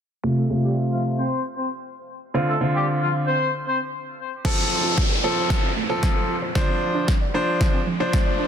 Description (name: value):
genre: dance-pop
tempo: 114 BPM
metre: 4/4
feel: straight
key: unclear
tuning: A4 = 440 Hz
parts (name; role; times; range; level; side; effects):
- clear grand piano; accompaniment; 0.2-8.5 s; C3 to C5; -23 LUFS; equal; sidechain pumping, low-pass filter
- warm horn section; melody; 0.4-3.8 s; F3 to C5; -26 LUFS; left 2 dB; sidechain pumping, low-pass filter, ping-pong delay
- hollow square pluck; arpeggios; 4.4-8.5 s; D3 to D5; -30 LUFS; right 5 dB; chorus, sidechain pumping, low-pass filter, ping-pong delay
- deep house drum kit; drums; 4.4-8.3 s; crash cymbal, kick drum, snare drum; -22 LUFS; equal; overdrive
- riser and downlifter; sound effects; 4.5-8.5 s; none; -27 LUFS; equal; none
room: light reverb, digital ambience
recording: dense, heavily limited modern master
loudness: -20 LUFS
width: side -8 dB against mid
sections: 0.2-4.5 A section; 4.5-8.5 B section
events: filter sweep 0.2-4.5; build-up 4.5-8.5; drum fill 4.5-8.5; riser 4.5-8.5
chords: 0.2 F; 2.3 Dm7; 4.5 F; 6.6 Dm7